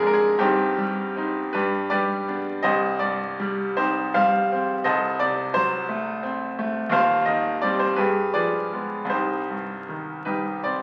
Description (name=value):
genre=classical, romantic character piece for solo piano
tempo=50-59 BPM (dotted quarters)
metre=6/8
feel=rubato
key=C minor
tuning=A4 = 440 Hz
part: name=bright grand piano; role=solo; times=0.0-10.8 s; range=Eb1 to F5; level=-24 LUFS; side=equal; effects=none
room=wet large studio reverb, RT60 0.8 s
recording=very old 78 rpm record, vinyl crackle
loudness=-24 LUFS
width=mono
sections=0.0-10.8 A section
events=none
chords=0.4 Cm/G; 1.5 G; 2.6 Cm; 4.9 Cdim7; 6.9 Cm/Eb; 8.0 G7b9; 9.1 Cm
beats=| 0.38 1.52 | 2.63 3.77 | 4.86 5.89 | 6.92 7.98 | 9.11 10.27